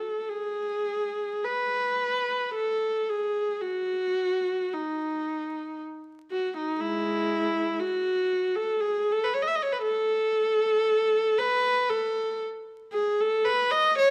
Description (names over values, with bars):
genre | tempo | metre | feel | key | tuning
classical, free, expressive piece for unaccompanied viola | 45-61 BPM | 3/4 | rubato | unclear | A4 = 441 Hz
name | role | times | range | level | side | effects
warm viola | solo | 0.0-14.1 s | G#3 to E5 | -27 LUFS | equal | none
room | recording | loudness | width
moderate recital hall reverb, RT60 1.6 s | close, detailed microphones, vinyl crackle | -27 LUFS | mono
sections
0.3-14.1 A section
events
none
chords
none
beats
| 0.31 1.46 2.56 | 3.63 4.74 5.82 | 6.81 7.80 8.80 | 9.81 10.86 11.91 | 12.95 13.99